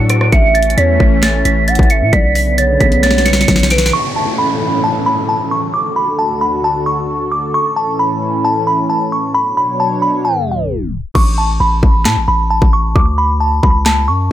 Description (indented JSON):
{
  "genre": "hip hop, trap",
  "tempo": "133 BPM",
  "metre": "4/4",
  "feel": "half-time",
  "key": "A major",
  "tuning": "A4 = 440 Hz",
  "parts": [
    { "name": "glassy synth bell", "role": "melody", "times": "0.0-14.3 s", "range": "A5 to D7", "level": "-15 LUFS", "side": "equal", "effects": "chorus, tremolo, low-pass filter" },
    { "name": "warm analog pad", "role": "sustained chords", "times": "0.0-11.1 s", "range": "D2 to C#5", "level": "-19 LUFS", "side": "left 1 dB", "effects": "chorus" },
    { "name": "long sustained 808-style bass", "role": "bass", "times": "0.0-3.9, 11.2-14.3 s", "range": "A1 to A2", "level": "-15 LUFS", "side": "equal", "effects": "none" },
    { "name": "trap drum kit", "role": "drums", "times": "0.1-4.0, 11.2-14.0 s", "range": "crash cymbal, handclaps, hi-hat, kick drum, rim click, snare drum", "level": "-14 LUFS", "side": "equal", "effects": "none" },
    { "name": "gliding portamento lead", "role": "second line", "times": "0.3-3.9 s", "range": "B4 to F#5", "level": "-18 LUFS", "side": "right 3 dB", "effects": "chorus, ping-pong delay" },
    { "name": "downlifter", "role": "sound effects", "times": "3.9-7.5 s", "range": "none", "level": "-24 LUFS", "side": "equal", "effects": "none" }
  ],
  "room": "light reverb",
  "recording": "tape stop",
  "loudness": "-11 LUFS",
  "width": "side -12 dB against mid",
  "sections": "0.0-3.9 A section; 3.9-11.2 B section; 11.2-14.3 C section",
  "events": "drum fill 3.0-3.9; tape stop 10.2-11.2; hi-hats muted 11.2-14.3",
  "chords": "0.3 A; 2.1 Bmadd9; 3.9 A; 5.7 D; 7.5 A; 9.3 Bmadd9; 11.2 Asus2; 13.0 D",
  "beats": "| 0.32 0.78 1.23 1.68 | 2.13 2.58 3.03 3.48 | 3.93 4.38 4.84 5.29 | 5.74 6.19 6.64 7.09 | 7.54 7.99 8.45 8.90 | 9.35 9.80 10.25 10.70 | 11.15 11.60 12.05 12.51 | 12.96 13.41 13.86 14.31"
}